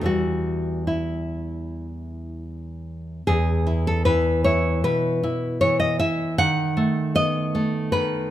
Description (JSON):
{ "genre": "romantic piece for solo classical guitar", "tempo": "76 BPM", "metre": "4/4", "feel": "rubato", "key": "E minor, E major from 3.3 s", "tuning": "A4 = 439 Hz", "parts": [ { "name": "nylon-string guitar", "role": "solo", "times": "0.0-8.3 s", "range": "E2 to F#5", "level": "-21 LUFS", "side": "equal", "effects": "none" } ], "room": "light reverb", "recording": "minimal, uncompressed stereo recording", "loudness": "-20 LUFS", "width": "side -12 dB against mid", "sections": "0.0-3.3 A section; 3.3-8.3 B section", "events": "none", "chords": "0.1 Em; 3.3 E5; 6.4 B7/D#" }